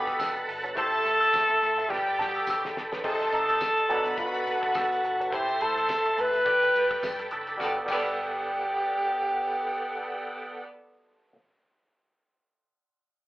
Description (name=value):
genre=disco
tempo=105 BPM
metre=4/4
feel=swing 56% on 16ths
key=G major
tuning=A4 = 440 Hz
part: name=warm alto saxophone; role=melody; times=0.0-10.7 s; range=F#4 to B4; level=-26 LUFS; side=equal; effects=none
part: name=clear studio violin section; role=second line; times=0.0-10.7 s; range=B3 to C6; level=-35 LUFS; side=equal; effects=none
part: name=clean electric guitar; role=accompaniment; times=0.0-11.4 s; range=F#3 to A4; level=-34 LUFS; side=right 1 dB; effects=wah, phaser
part: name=overdriven clav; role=accompaniment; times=0.0-11.4 s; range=B2 to C5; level=-36 LUFS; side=equal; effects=none
part: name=bright tonewheel organ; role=sustained chords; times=0.0-10.6 s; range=B3 to C6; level=-34 LUFS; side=equal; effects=overdrive, chorus vibrato, slow rotary speaker
part: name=vintage muted fingered electric bass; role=bass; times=0.0-11.3 s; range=F#1 to C3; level=-53 LUFS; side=equal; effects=none
part: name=damped 70s drum kit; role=drums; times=0.1-8.1 s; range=crash cymbal, hi-hat, kick drum, snare drum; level=-41 LUFS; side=equal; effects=none
part: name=tambourine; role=percussion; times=0.2-8.1 s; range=none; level=-48 LUFS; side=left 2 dB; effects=none
room=wet small room reverb, RT60 0.5 s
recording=band playing live in one room, telephone sound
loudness=-24 LUFS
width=side -17 dB against mid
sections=0.0-3.0 A section; 3.0-7.6 B section; 7.6-9.9 C section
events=drum fill 1.9-3.0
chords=0.0 Gmaj9; 0.8 Am7; 1.9 Gmaj9; 3.0 Cm6; 3.9 Gmaj9/B; 5.3 Am7; 6.5 Gmaj9